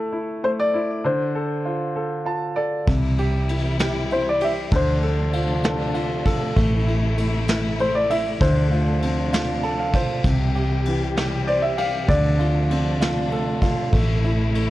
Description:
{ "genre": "six-eight pop ballad", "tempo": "65 BPM (dotted quarters)", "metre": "6/8", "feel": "straight", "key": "D minor", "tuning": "A4 = 442 Hz", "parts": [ { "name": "clear concert grand piano", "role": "accompaniment", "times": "0.0-14.7 s", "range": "C3 to A5", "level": "-25 LUFS", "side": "right 1 dB", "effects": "none" }, { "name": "dark baby grand piano", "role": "melody", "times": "0.4-13.6 s", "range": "C5 to F5", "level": "-24 LUFS", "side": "left 1 dB", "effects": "ping-pong delay" }, { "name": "warm studio string section", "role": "sustained chords", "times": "2.9-14.7 s", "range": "C3 to G4", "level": "-28 LUFS", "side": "left 1 dB", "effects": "none" }, { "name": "vintage muted fingered electric bass", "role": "bass", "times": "2.9-14.7 s", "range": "A1 to D2", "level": "-23 LUFS", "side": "equal", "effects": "none" }, { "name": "vintage brush drum kit", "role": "drums", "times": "2.9-14.7 s", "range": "kick drum, ride cymbal, snare drum", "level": "-25 LUFS", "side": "equal", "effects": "none" } ], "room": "light reverb, small room ambience", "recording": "worn, warbling old tape, cassette tape, warbly pitch drift", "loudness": "-19 LUFS", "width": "side -16 dB against mid", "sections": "0.0-14.7 A section", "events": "grand piano fill 2.0-2.9, 9.3-10.2", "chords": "0.0 A5; 1.0 Dm7; 2.9 C; 4.7 Dm7; 6.6 Am; 8.4 Dm7; 10.2 C; 12.1 Dm7; 13.9 Am" }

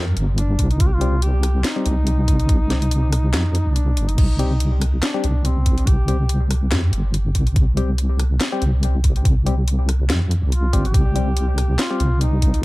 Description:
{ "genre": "deep dubstep", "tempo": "142 BPM", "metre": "4/4", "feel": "swing 55% on 16ths, half-time", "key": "C minor", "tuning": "A4 = 440 Hz", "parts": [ { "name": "deep soft wobble bass", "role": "bass", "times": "0.0-12.6 s", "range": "G1 to F2", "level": "-18 LUFS", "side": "equal", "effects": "chorus" }, { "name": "garage drum kit", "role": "drums", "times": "0.2-12.6 s", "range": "crash cymbal, handclaps, hi-hat, rim click, snare drum", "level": "-26 LUFS", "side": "left 1 dB", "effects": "none" }, { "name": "mellow duduk", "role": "melody", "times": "0.4-6.5, 10.5-12.6 s", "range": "C4 to G4", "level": "-28 LUFS", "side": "equal", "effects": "dub echo" }, { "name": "electronic kick drum", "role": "drums", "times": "0.6-12.5 s", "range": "none", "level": "-18 LUFS", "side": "equal", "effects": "none" }, { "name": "percussive organ stab", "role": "stabs", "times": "1.0-12.0 s", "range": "G3 to G4", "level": "-28 LUFS", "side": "left 4 dB", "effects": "chorus, cassette tape, dub echo" } ], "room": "little or no reverb", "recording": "none", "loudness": "-16 LUFS", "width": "side -20 dB against mid", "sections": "0.0-12.6 A section", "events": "kick drops out 3.8-4.2", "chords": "0.0 C5" }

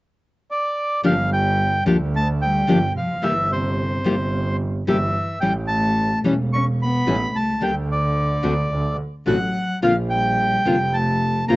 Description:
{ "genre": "tango", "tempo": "109 BPM", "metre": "4/4", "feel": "rubato", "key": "G minor", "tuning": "A4 = 439 Hz", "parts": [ { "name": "bandoneon", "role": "melody", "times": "0.5-11.6 s", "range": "C5 to C#6", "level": "-22 LUFS", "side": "right 1 dB", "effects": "none" }, { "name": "dark cello", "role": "second line", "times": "1.0-11.6 s", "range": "C3 to C#4", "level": "-26 LUFS", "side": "left 2 dB", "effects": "none" }, { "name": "nylon-string guitar", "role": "accompaniment", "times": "1.0-11.6 s", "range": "C3 to G4", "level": "-20 LUFS", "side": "left 2 dB", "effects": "none" }, { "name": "clear double bass", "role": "bass", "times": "1.0-11.6 s", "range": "E1 to D2", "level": "-23 LUFS", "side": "right 1 dB", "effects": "none" } ], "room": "little or no reverb", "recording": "recorded outdoors, with no room sound, nothing above 7.8 kHz", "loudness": "-18 LUFS", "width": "side -19 dB against mid", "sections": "0.0-1.0 A section; 1.0-11.6 B section", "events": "none", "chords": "0.0 N.C.; 1.0 Gm7; 3.2 C/G; 5.4 A5; 7.6 G5/D; 8.7 D; 9.8 Bbadd9" }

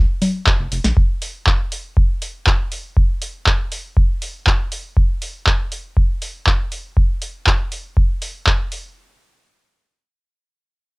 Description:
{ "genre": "acid house", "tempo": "120 BPM", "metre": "4/4", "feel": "straight", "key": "unclear", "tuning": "A4 = 441 Hz", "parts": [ { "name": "round analog bass", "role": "bass", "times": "0.0-0.9 s", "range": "F1 to Bb1", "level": "-21 LUFS", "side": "equal", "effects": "sidechain pumping" }, { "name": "booming analog drum machine", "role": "drums", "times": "0.2-8.8 s", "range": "congas, handclaps, hi-hat, snare drum", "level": "-20 LUFS", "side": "equal", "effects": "cassette tape" }, { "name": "dusty soul sampler-style drum kit", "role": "drums", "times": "0.2-0.8 s", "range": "hi-hat, snare drum", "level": "-36 LUFS", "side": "equal", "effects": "overdrive, high-pass filter on hats, cassette tape, high-pass filter on snare, high-pass filter on room" }, { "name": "electronic kick drum", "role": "drums", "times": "0.5-8.6 s", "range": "none", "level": "-16 LUFS", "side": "equal", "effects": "cassette tape" } ], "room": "little or no reverb", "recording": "home recording on cassette", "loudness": "-17 LUFS", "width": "side -32 dB against mid", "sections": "0.0-9.0 A section", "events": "none", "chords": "none" }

